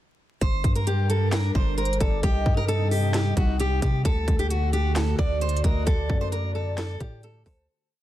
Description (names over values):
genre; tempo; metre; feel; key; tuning
hip hop, trap; 132 BPM; 4/4; half-time; unclear; A4 = 442 Hz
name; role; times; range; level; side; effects
fingerpicked steel-string acoustic guitar; melody; 0.4-7.7 s; F#4 to D5; -29 LUFS; equal; none
airy breathy pad; sustained chords; 0.4-7.7 s; C3 to Bb4; -32 LUFS; right 2 dB; chorus
long sustained 808-style bass; bass; 0.4-7.7 s; G1 to C3; -25 LUFS; equal; none
trap drum kit; drums; 0.4-7.6 s; handclaps, hi-hat, kick drum, snare drum; -25 LUFS; equal; none
warm velvety synth lead; second line; 1.8-7.7 s; C5 to Eb5; -34 LUFS; left 2 dB; chorus, ping-pong delay
room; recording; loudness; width
little or no reverb; dense, heavily limited modern master, vinyl crackle; -21 LUFS; side -14 dB against mid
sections
0.4-7.7 hook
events
fade-out 5.9-7.7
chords
0.4 Gm; 2.2 Cm; 4.1 D